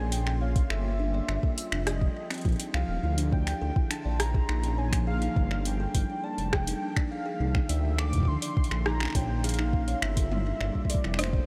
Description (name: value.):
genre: IDM.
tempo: 103 BPM.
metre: 4/4.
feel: straight.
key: unclear.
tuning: A4 = 440 Hz.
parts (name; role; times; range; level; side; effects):
warm velvety synth lead; melody; 0.0-11.5 s; C5 to D6; -39 LUFS; equal; chorus, cassette tape, delay.
glassy FM pad; sustained chords; 0.0-11.5 s; F3 to C6; -40 LUFS; equal; ensemble chorus, built-in reverb.
kalimba; arpeggios; 0.0-11.5 s; C4 to D5; -39 LUFS; equal; vintage 12-bit sampler grit, delay.
dark detuned saw bass; bass; 0.0-11.4 s; Eb1 to D2; -31 LUFS; equal; none.
electro analog drum machine; drums; 0.1-11.3 s; finger snaps, hi-hat, rim click, toms; -37 LUFS; equal; none.
electronic kick drum; drums; 0.6-11.4 s; none; -29 LUFS; equal; none.
room: light reverb.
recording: none.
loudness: -28 LUFS.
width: mono.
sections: 0.0-11.5 A section.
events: none.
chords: 0.0 Bbm9; 0.7 Gm9; 1.9 Fm9; 3.0 Dm9; 4.2 Bbm9; 5.4 Gm9; 6.5 Fm9; 7.7 Dm9; 8.9 Bbm9; 10.0 Gm9.